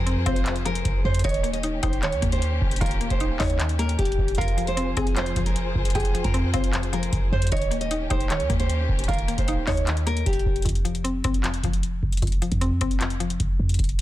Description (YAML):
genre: hip hop, trap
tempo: 153 BPM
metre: 4/4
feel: half-time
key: F minor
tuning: A4 = 440 Hz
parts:
  - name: nylon-string guitar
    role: melody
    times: 0.0-10.6 s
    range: G4 to Eb5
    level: -30 LUFS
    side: right 2 dB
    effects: low-pass filter, ping-pong delay
  - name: warbly dusty pluck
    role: second line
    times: 0.0-10.6 s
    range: Eb5 to Ab5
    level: -36 LUFS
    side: right 4 dB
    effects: chorus, ping-pong delay
  - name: mallet-like synth pluck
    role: accompaniment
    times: 0.0-13.8 s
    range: F2 to Eb4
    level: -30 LUFS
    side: left 4 dB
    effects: chorus, low-pass filter
  - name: dark symphonic string section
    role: sustained chords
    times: 0.0-10.6 s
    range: Eb3 to C5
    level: -34 LUFS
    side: left 2 dB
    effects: none
  - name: clean 808-style bass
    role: bass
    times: 0.0-14.0 s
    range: Eb1 to F2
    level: -26 LUFS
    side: equal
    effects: none
  - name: booming analog drum machine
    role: drums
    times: 0.1-14.0 s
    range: handclaps, hi-hat, kick drum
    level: -25 LUFS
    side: equal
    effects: none
room: little or no reverb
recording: dense, heavily limited modern master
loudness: -21 LUFS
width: side -14 dB against mid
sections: 0.0-10.7 A section; 10.7-14.0 B section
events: none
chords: 0.0 Fm; 1.2 Eb7; 4.4 Fm; 7.5 Eb7; 10.7 F5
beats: 0.07 0.46 0.85 | 1.24 1.64 2.03 2.42 | 2.81 3.20 3.60 3.99 | 4.38 4.77 5.17 5.56 | 5.95 6.34 6.73 7.12 | 7.52 7.91 8.30 8.69 | 9.09 9.48 9.87 10.26 | 10.65 11.05 11.44 11.83 | 12.22 12.62 13.01 13.40 | 13.79